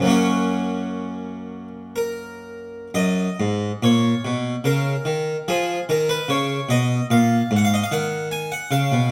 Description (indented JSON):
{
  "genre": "classical, baroque-style suite movement for harpsichord",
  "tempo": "57-75 BPM",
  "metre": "3/4",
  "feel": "rubato",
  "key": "F# major",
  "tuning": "A4 = 440 Hz",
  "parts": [
    { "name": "harpsichord", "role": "solo", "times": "0.0-9.1 s", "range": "F#2 to G#5", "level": "-22 LUFS", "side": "equal", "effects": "none" }
  ],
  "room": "moderate large studio reverb, RT60 1.5 s",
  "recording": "none",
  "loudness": "-22 LUFS",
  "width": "mono",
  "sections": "0.0-2.9 A section; 2.9-9.1 B section",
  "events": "none",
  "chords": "0.1 F#; 5.5 C#7; 7.9 D#m"
}